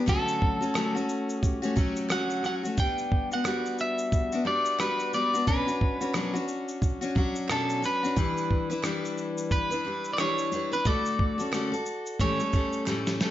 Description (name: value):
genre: acoustic pop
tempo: 89 BPM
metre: 4/4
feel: swing 60% on 16ths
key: D major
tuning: A4 = 439 Hz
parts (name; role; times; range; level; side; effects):
- electric guitar at the edge of break-up; melody; 0.0-12.8 s; A4 to G5; -30 LUFS; right 1 dB; spring reverb, plate reverb
- picked steel-string acoustic guitar; accompaniment; 0.0-13.3 s; A2 to B4; -29 LUFS; left 2 dB; none
- dusty soul sampler-style drum kit; drums; 0.1-13.3 s; kick drum, rim click, shaker, snare drum; -29 LUFS; right 1 dB; none
- group handclap; percussion; 0.8-13.1 s; none; -44 LUFS; right 6 dB; none
room: moderate studio reverb, RT60 0.5 s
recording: nothing above 7.6 kHz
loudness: -25 LUFS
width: side -12 dB against mid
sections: 0.0-13.3 A section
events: drum fill 12.9-13.3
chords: 0.1 Dmaj7; 2.8 Gmaj7; 5.5 Bmadd9; 8.2 Em7; 10.9 Dmaj7; 12.2 A7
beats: | 0.08 0.76 1.43 2.10 | 2.78 3.45 4.12 4.80 | 5.47 6.14 6.82 7.49 | 8.16 8.84 9.51 10.18 | 10.85 11.52 12.20 12.87